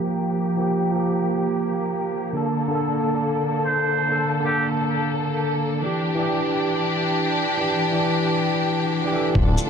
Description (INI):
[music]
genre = future garage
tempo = 137 BPM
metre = 4/4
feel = swing 62% on 16ths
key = unclear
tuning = A4 = 439 Hz
[part]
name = barky tine electric piano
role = accompaniment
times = 0.0-9.7 s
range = D3 to A4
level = -23 LUFS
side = right 2 dB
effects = sidechain pumping, digital delay
[part]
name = rich symphonic string section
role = sustained chords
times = 0.0-9.7 s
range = D3 to A4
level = -24 LUFS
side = left 2 dB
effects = sidechain pumping
[part]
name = trumpet with metal mute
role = melody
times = 3.7-4.7 s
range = G4 to C5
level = -25 LUFS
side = right 2 dB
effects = vintage 12-bit sampler grit, ping-pong delay
[part]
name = dark detuned saw bass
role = bass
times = 9.4-9.6 s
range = D1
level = -20 LUFS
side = left 1 dB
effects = sidechain pumping
[part]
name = electronic kick drum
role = drums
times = 9.4-9.5 s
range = none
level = -20 LUFS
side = left 1 dB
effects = none
[part]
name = cabasa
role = drums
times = 9.6-9.7 s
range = none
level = -29 LUFS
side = left 5 dB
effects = none
[sound]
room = wet plate reverb, RT60 1.3 s, small room ambience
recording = bright 1980s-style digital production, low-pass filter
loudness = -20 LUFS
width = side -7 dB against mid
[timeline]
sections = 0.0-9.4 A section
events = filter sweep 0.0-9.4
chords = 0.0 Gm7; 2.3 Bbmaj7; 5.8 Em7